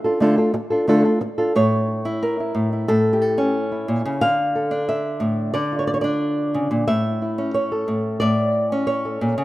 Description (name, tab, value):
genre	flamenco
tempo	180 BPM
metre	4/4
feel	straight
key	unclear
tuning	A4 = 440 Hz
part	flamenco guitar	solo	0.0-9.4 s	A2 to F5	-18 LUFS	equal	none
room	moderate lush hall reverb, RT60 2.2 s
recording	rough home demo mix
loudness	-18 LUFS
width	side -17 dB against mid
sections	0.0-1.5 A section; 1.5-9.4 B section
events	none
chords	0.0 Dm; 1.5 A; 4.2 Dm; 6.9 A